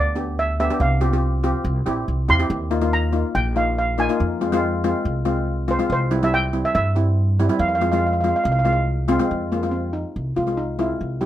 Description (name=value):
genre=calypso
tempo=141 BPM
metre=4/4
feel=straight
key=F minor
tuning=A4 = 438 Hz
part: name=steel pan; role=melody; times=0.0-11.3 s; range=Bb3 to C6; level=-22 LUFS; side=right 2 dB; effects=none
part: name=upright bass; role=bass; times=0.0-11.3 s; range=Bb1 to G2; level=-22 LUFS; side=equal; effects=none
part: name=steel pan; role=accompaniment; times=0.2-11.3 s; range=G3 to G4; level=-23 LUFS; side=left 2 dB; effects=none
room=light reverb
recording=minimal, uncompressed stereo recording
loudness=-18 LUFS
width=side -12 dB against mid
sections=0.0-9.3 A section; 9.3-11.3 B section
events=none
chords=0.0 G; 0.8 Csus4; 1.7 C; 2.5 Ebsus2; 4.2 Fm; 5.9 C; 7.6 Fm